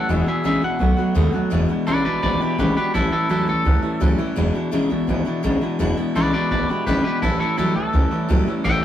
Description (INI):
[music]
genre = rockabilly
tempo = 168 BPM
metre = 4/4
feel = straight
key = E mixolydian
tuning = A4 = 440 Hz
[part]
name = twangy electric guitar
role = melody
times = 0.0-8.8 s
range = E4 to G5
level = -23 LUFS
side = equal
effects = spring reverb
[part]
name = picked steel-string acoustic guitar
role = accompaniment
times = 0.0-8.8 s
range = E2 to F#4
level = -24 LUFS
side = left 2 dB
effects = none
[part]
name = electric guitar through a small old amp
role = riff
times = 0.0-8.8 s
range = E2 to G#3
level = -23 LUFS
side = equal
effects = none
[part]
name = upright bass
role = bass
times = 0.1-8.8 s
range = E1 to E2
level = -22 LUFS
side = equal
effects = none
[sound]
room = light reverb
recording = rough rehearsal-room recording, tube saturation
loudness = -18 LUFS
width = side -11 dB against mid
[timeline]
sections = 0.0-1.5 A section; 1.5-8.8 B section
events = clean electric guitar solo 1.5-8.8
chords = 0.1 E7; 0.8 B7; 1.5 E7; 2.9 A7; 4.4 E7; 7.2 A7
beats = | 0.09 0.45 0.80 1.16 | 1.52 1.87 2.23 2.59 | 2.94 3.30 3.66 4.01 | 4.37 4.73 5.08 5.44 | 5.80 6.15 6.51 6.87 | 7.22 7.58 7.93 8.29 | 8.65